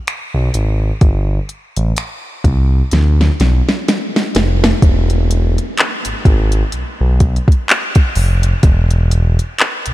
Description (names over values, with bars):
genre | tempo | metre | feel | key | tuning
contemporary R&B | 63 BPM | 4/4 | swing 58% on 16ths | unclear | A4 = 444 Hz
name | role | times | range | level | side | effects
smooth R&B drum kit | drums | 0.1-9.9 s | finger snaps, handclaps, hi-hat, kick drum, snare drum | -15 LUFS | equal | none
smooth gliding synth bass | bass | 0.3-9.9 s | E1 to D2 | -13 LUFS | equal | none
room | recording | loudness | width
light reverb, digital ambience | none | -12 LUFS | side -16 dB against mid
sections
0.0-4.8 A section; 4.8-9.9 B section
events
drum fill 2.9-4.8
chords
none